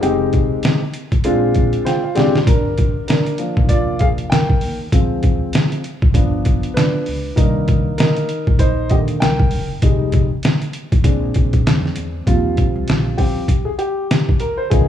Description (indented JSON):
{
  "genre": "hip hop, jazz-hop",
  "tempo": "98 BPM",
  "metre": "4/4",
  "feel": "swing 58% on 16ths",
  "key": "Eb major",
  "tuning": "A4 = 442 Hz",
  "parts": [
    { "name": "warm upright piano", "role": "accompaniment", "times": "0.0-14.9 s", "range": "D3 to G5", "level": "-20 LUFS", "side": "left 1 dB", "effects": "none" },
    { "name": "upright bass", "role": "bass", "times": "0.0-14.9 s", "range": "F1 to F2", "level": "-22 LUFS", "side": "equal", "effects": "none" },
    { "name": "trip hop sampler-style drum kit", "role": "drums", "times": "0.0-14.9 s", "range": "hi-hat, kick drum, snare drum", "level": "-16 LUFS", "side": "equal", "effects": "none" }
  ],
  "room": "studio ambience",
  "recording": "rough home demo mix, small room reverb",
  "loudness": "-14 LUFS",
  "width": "side -10 dB against mid",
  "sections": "0.0-2.5 A section; 2.5-12.3 B section; 12.3-14.9 C section",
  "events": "upright piano fill 1.6-2.5; drum fill 1.9-2.5; upright piano solo 2.5-12.3, 12.3-14.9",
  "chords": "0.0 Fm9; 1.2 Bb9; 2.5 Gm7; 4.9 Dm7b5; 6.1 G7; 7.4 Cm7; 9.8 Fm7; 11.0 Bb7; 12.3 Eb69",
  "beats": "| 0.03 0.64 1.25 1.86 | 2.48 3.09 3.70 4.31 | 4.92 5.54 6.15 6.76 | 7.37 7.99 8.60 9.21 | 9.82 10.43 11.05 11.66 | 12.27 12.88 13.49 14.11 | 14.72"
}